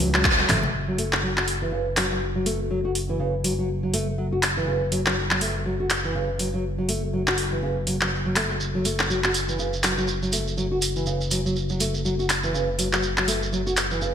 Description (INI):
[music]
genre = afro house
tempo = 122 BPM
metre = 4/4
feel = swing 58% on 16ths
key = F# minor pentatonic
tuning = A4 = 440 Hz
[part]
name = nylon-string guitar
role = arpeggios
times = 0.0-14.1 s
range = C#3 to F#4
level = -26 LUFS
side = equal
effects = sidechain pumping, low-pass filter, ping-pong delay
[part]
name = smooth gliding synth bass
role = bass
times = 0.0-14.1 s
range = F#1 to C#2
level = -28 LUFS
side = equal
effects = sidechain pumping
[part]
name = deep house drum kit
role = drums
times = 0.0-13.9 s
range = handclaps, hi-hat, toms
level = -24 LUFS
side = equal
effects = studio reverb, gated reverb
[part]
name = congas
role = percussion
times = 0.0-0.7 s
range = none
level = -30 LUFS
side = right 1 dB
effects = none
[part]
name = shekere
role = percussion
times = 8.6-14.1 s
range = none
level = -30 LUFS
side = right 5 dB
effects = none
[sound]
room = moderate lush hall reverb, RT60 1.7 s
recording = bright 1980s-style digital production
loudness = -22 LUFS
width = side -8 dB against mid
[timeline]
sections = 0.7-14.1 A section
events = band accent 0.2; drum fill 0.5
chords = 0.0 F#m; 0.7 N.C.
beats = 0.25 | 0.74 1.23 1.72 2.21 | 2.71 3.20 3.69 4.18 | 4.67 5.16 5.66 6.15 | 6.64 7.13 7.62 8.12 | 8.61 9.10 9.59 10.08 | 10.57 11.07 11.56 12.05 | 12.54 13.03 13.53 14.02